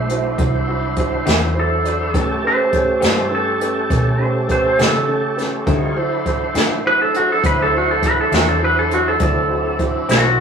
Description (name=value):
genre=slow blues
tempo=68 BPM (dotted quarters)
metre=12/8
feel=straight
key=unclear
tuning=A4 = 435 Hz
part: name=clean lap steel guitar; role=melody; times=0.0-10.4 s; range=A3 to C5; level=-18 LUFS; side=right 1 dB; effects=none
part: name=clear upright piano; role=accompaniment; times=0.0-10.4 s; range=C#4 to D5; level=-24 LUFS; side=right 5 dB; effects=none
part: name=overdriven tonewheel organ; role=sustained chords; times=0.0-10.4 s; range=F#3 to C#5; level=-22 LUFS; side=equal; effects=chorus vibrato, slow rotary speaker
part: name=vintage muted fingered electric bass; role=bass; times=0.0-10.4 s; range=B1 to D3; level=-23 LUFS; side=equal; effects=none
part: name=jazz brush drum kit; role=drums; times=0.1-10.2 s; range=hi-hat, kick drum, snare drum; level=-20 LUFS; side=equal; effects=none
part: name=electric guitar through a small old amp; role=accompaniment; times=1.3-10.3 s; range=A2 to E4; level=-25 LUFS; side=left 4 dB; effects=tremolo
room=moderate studio reverb, RT60 0.6 s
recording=rough rehearsal-room recording, tube saturation, small room ambience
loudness=-15 LUFS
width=side -6 dB against mid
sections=0.0-10.4 A section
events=electric slide guitar solo 0.0-10.4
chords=0.0 D9; 2.2 A9; 5.7 D9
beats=0.39 1.27 | 2.15 3.03 3.91 4.80 | 5.68 6.56 7.44 8.32 | 9.21 10.09